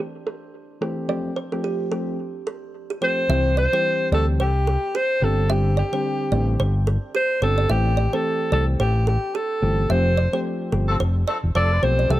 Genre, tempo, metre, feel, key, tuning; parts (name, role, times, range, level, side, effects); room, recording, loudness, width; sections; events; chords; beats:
afrobeats; 109 BPM; 4/4; swing 58% on 16ths; A4 = 441 Hz
kalimba; riff; 0.0-12.2 s; G4 to E5; -30 LUFS; right 4 dB; low-pass filter
soft electric-piano-like synth keys; accompaniment; 0.8-12.2 s; D3 to G4; -27 LUFS; left 1 dB; chorus, low-pass filter
warm alto saxophone; melody; 3.0-12.2 s; G4 to D5; -23 LUFS; equal; analog delay
fingered electric bass; bass; 3.3-12.2 s; E1 to D2; -20 LUFS; equal
mellow horn section; second line; 10.9-11.8 s; F3 to A4; -28 LUFS; left 2 dB
small room ambience; dry, gritty hardware recording; -19 LUFS; side -15 dB against mid
0.0-3.3 A section; 3.3-12.2 B section
band accent 9.9-12.1
0.0 Am7; 1.1 Fadd9; 3.3 C; 5.2 Gsus4; 9.9 Fadd9
0.54 | 1.09 1.64 2.19 2.74 | 3.29 3.84 4.39 4.94 | 5.49 6.04 6.59 7.15 | 7.70 8.25 8.80 9.35 | 9.90 10.45 11.00 11.55 | 12.10